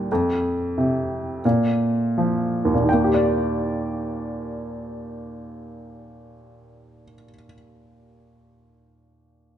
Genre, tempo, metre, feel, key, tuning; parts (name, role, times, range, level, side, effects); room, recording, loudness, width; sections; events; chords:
classical, lyrical solo piano; 41-48 BPM; 4/4; rubato; Eb lydian; A4 = 440 Hz
bright upright piano; solo; 0.0-9.6 s; Eb2 to A5; -21 LUFS; equal
light reverb; nothing above 10.5 kHz; -20 LUFS; side -10 dB against mid
0.0-2.9 A section; 2.9-8.5 B section
slowing down 0.0-2.9
0.1 F; 1.4 Bb5; 2.9 Ebmaj7